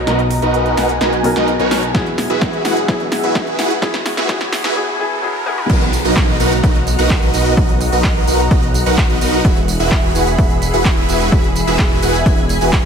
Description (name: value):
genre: EDM, festival progressive house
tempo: 128 BPM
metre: 4/4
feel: straight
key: B major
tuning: A4 = 439 Hz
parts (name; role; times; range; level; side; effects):
- felt-muted upright piano; accompaniment; 0.0-5.7 s; B2 to A#5; -21 LUFS; left 2 dB; sidechain pumping, dub echo
- lush unison pad; sustained chords; 0.0-12.9 s; F#4 to C#6; -23 LUFS; left 1 dB; chorus, phaser, sidechain pumping
- wide detuned saw bass; bass; 0.0-12.9 s; E1 to B1; -20 LUFS; equal; chorus, sidechain pumping
- riser, swell and downlifter; sound effects; 2.6-9.4 s; none; -28 LUFS; right 2 dB; none
- supersaw chords; riff; 0.1-12.8 s; D#4 to G#5; -18 LUFS; right 2 dB; phaser, sidechain pumping, low-pass filter, dub echo
- big-room dance drum kit; drums; 0.1-12.8 s; crash cymbal, handclaps, hi-hat, snare drum, tambourine, toms; -23 LUFS; equal; overdrive
- electronic kick drum; drums; 1.9-12.8 s; none; -15 LUFS; equal; overdrive
room: light reverb, digital ambience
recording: high-pass filter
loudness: -13 LUFS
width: side -6 dB against mid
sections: 0.0-5.7 A section; 5.7-12.9 B section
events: build-up 0.0-5.7; drum fill 0.0-4.8, 5.5; filter sweep on supersaw synth 0.0-5.7; filter sweep on analog synth pad 0.0-5.7; filter sweep 0.0-5.7; swell 4.8-5.7; drop 5.7-12.9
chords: 0.0 Bmaj7; 1.9 Eadd9; 5.7 Bmaj7; 9.4 Eadd9